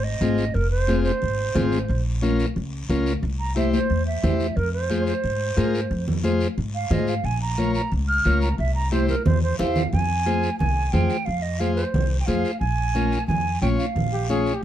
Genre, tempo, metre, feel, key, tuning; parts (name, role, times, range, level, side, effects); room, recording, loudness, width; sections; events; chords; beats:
latin, cumbia; 179 BPM; 4/4; straight; F harmonic minor, F minor from 9.9 s; A4 = 440 Hz
hollow concert flute; melody; 0.0-14.5 s; Bb4 to F6; -27 LUFS; right 4 dB; plate reverb
upright bass; bass; 0.0-14.5 s; F1 to Ab2; -24 LUFS; equal
overdriven combo organ; accompaniment; 0.2-14.5 s; C4 to Db5; -26 LUFS; left 1 dB
congas; percussion; 0.2-14.5 s; -27 LUFS; left 2 dB
guiro; percussion; 0.2-14.6 s; -39 LUFS; left 4 dB
bright trombone; second line; 14.1-14.6 s; G4 to Ab4; -27 LUFS; left 4 dB
light reverb; dark, warm production; -20 LUFS; side -11 dB against mid
0.0-9.9 A section; 9.9-14.6 B section
flute solo 0.0-9.9; drum fill 8.9-9.9
0.0 Fm; 1.9 Bbm; 3.2 C; 4.6 Fm; 7.2 Bbm; 8.6 C; 9.9 Fm; 12.6 Bbm
0.21 | 0.55 0.88 1.22 1.55 | 1.89 2.22 2.56 2.89 | 3.23 3.56 3.90 4.23 | 4.57 4.90 5.24 5.57 | 5.91 6.24 6.58 6.91 | 7.25 7.58 7.92 8.25 | 8.59 8.92 9.26 9.59 | 9.93 10.26 10.60 10.94 | 11.27 11.61 11.94 12.28 | 12.62 12.95 13.29 13.62 | 13.96 14.29 14.63